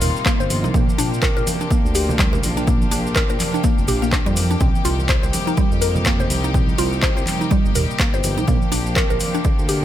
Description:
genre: afro house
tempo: 124 BPM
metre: 4/4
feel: swing 59% on 16ths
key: C minor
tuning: A4 = 440 Hz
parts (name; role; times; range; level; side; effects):
- rich studio string section; sustained chords; 0.0-9.8 s; C3 to G4; -26 LUFS; left 2 dB; sidechain pumping
- mallet-like synth pluck; arpeggios; 0.0-9.8 s; D3 to C5; -24 LUFS; equal; chorus, phaser, sidechain pumping, ping-pong delay
- smooth synth bass; bass; 0.0-9.8 s; F1 to F2; -23 LUFS; equal; tube saturation, sidechain pumping
- afro-pop drum kit; drums; 0.0-9.8 s; handclaps, hi-hat, rim click, toms; -24 LUFS; equal; none
- maracas; percussion; 0.0-9.8 s; none; -32 LUFS; right 2 dB; none
- electronic kick drum; drums; 0.3-9.6 s; none; -20 LUFS; equal; overdrive
- congas; percussion; 0.5-9.3 s; none; -28 LUFS; right 5 dB; none
room: small room ambience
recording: none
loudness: -16 LUFS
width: side -12 dB against mid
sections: 0.0-9.8 A section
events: none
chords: 0.0 Cm7; 0.7 Bb69; 4.6 Cm7; 8.5 Bb69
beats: 0.26 | 0.74 1.22 1.71 2.19 | 2.67 3.16 3.64 4.13 | 4.61 5.09 5.58 6.06 | 6.55 7.03 7.51 8.00 | 8.48 8.96 9.45

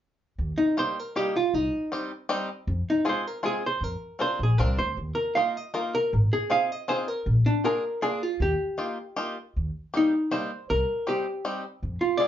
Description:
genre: musette waltz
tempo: 158 BPM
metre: 3/4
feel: straight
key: Eb major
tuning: A4 = 440 Hz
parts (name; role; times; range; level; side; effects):
- upright bass; bass; 0.4-11.9 s; Ab1 to F2; -25 LUFS; equal; none
- archtop guitar, miked and amplified; melody; 0.6-12.3 s; D4 to F5; -25 LUFS; equal; none
- bluegrass banjo; accompaniment; 0.8-12.3 s; G3 to Bb4; -30 LUFS; left 2 dB; none
room: wet studio ambience, RT60 0.5 s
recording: heard from further back in the room, nothing above 7.4 kHz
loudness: -24 LUFS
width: side -10 dB against mid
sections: 0.4-9.6 A section; 9.6-12.3 A section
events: none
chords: 0.4 Eb; 1.5 Cm; 2.7 Fm; 3.8 Bbadd9/F; 5.0 Ebsus2; 6.1 Ab6; 7.3 Bb7; 8.4 Ebadd9; 9.6 Eb; 10.7 Cm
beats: | 0.38 0.77 1.15 | 1.53 1.91 2.29 | 2.67 3.05 3.43 | 3.81 4.20 4.59 | 4.97 5.36 5.74 | 6.12 6.50 6.88 | 7.26 7.64 8.02 | 8.40 8.78 9.16 | 9.55 9.94 10.32 | 10.69 11.07 11.44 | 11.82 12.19

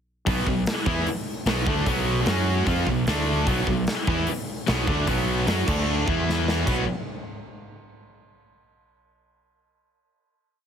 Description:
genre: hard rock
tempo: 150 BPM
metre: 4/4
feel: straight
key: unclear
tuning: A4 = 440 Hz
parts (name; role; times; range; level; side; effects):
- high-gain distorted guitar; riff; 0.3-6.8 s; B2 to F#4; -27 LUFS; left 11 dB; distortion
- tight distorted guitar; riff; 0.3-6.8 s; B2 to F#4; -28 LUFS; right 12 dB; distortion
- fuzz fingered electric bass; bass; 0.3-6.9 s; B1 to F#2; -27 LUFS; equal; overdrive
- big rock drum kit; drums; 0.3-6.8 s; crash cymbal, hi-hat, kick drum, snare drum; -27 LUFS; equal; none
room: small room ambience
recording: heavily compressed radio sound, multiband compression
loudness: -21 LUFS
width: side -8 dB against mid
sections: 0.3-6.7 riff; 6.7-8.2 final chord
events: drum fill 6.3-6.7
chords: 0.3 B5; 2.3 F#5; 2.7 B5; 3.1 D5; 3.5 B5; 5.7 D5; 6.1 E5; 6.7 B5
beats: | 0.27 0.67 1.07 1.47 | 1.87 2.27 2.67 3.07 | 3.47 3.87 4.27 4.67 | 5.07 5.47 5.87 6.27 | 6.66

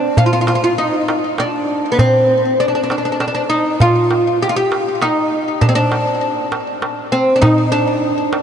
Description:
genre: Arabic maqam ensemble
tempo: 99 BPM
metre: 3/4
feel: straight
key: unclear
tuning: A4 = 440 Hz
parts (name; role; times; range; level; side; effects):
- oud; melody; 0.0-8.4 s; B3 to G4; -14 LUFS; equal; ping-pong delay
- darbuka; percussion; 0.2-8.4 s; none; -19 LUFS; right 1 dB; none
room: wet huge ambient reverb, RT60 5.1 s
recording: dreamy mix soaked in reverb, nothing above 10.6 kHz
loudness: -13 LUFS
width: side -8 dB against mid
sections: 0.0-8.4 A section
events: none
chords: none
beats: | 0.17 0.78 1.38 | 1.99 2.59 3.20 | 3.80 4.41 5.01 | 5.62 6.22 6.83 | 7.43 8.04

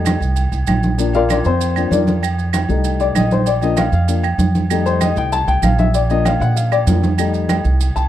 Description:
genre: latin, salsa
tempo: 194 BPM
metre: 4/4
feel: straight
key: Bb major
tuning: A4 = 436 Hz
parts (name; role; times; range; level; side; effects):
- dark upright piano; accompaniment; 0.0-8.1 s; F3 to A5; -19 LUFS; left 6 dB; none
- upright bass; bass; 0.0-8.1 s; Bb1 to Bb2; -17 LUFS; right 1 dB; none
- agogo bells and timbales; percussion; 0.1-8.1 s; none; -25 LUFS; right 6 dB; none
- claves; percussion; 0.1-7.6 s; none; -27 LUFS; right 17 dB; none
- congas; percussion; 0.1-8.1 s; none; -21 LUFS; right 1 dB; none
- maracas; percussion; 0.1-8.1 s; none; -32 LUFS; right 19 dB; none
room: studio reverb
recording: dry, close 1970s-style studio recording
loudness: -14 LUFS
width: side -12 dB against mid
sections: 0.0-8.1 A section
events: upright piano solo 0.0-8.1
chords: 0.0 F7; 1.0 Bb; 2.2 F7; 3.5 Bb; 4.7 F7; 5.9 Bb; 7.2 F7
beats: 0.06 0.37 0.68 | 0.99 1.30 1.61 1.92 | 2.23 2.54 2.85 3.15 | 3.46 3.77 4.08 4.39 | 4.70 5.01 5.32 5.63 | 5.94 6.25 6.56 6.87 | 7.18 7.49 7.80

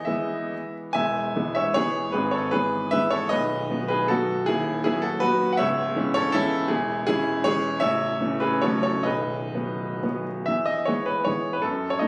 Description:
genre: classical, romantic triple-time dance for piano with dotted rhythms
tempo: 119-170 BPM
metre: 3/4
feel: rubato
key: E major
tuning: A4 = 440 Hz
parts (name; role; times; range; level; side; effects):
- clear baby grand piano; solo; 0.0-12.1 s; A0 to G#5; -25 LUFS; equal; none
room: moderate recital hall reverb, RT60 1.6 s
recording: recorded on a phone in the room, studio ambience, compression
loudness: -25 LUFS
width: mono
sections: 0.9-10.5 A section; 10.5-12.1 B section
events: none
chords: 0.0 E; 2.1 E/G#; 3.3 B; 4.5 B/D#; 5.6 C#m; 6.7 C#m/E; 7.8 A; 8.6 F#m/A; 9.1 B; 10.5 E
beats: 0.07 0.52 | 0.94 1.36 1.76 | 2.14 2.53 2.93 | 3.31 3.71 4.11 | 4.48 4.85 5.22 | 5.59 5.96 6.34 | 6.70 7.08 7.45 | 7.82 8.21 8.63 | 9.06 9.54 10.03 | 10.49 10.89 11.27 | 11.64 12.02

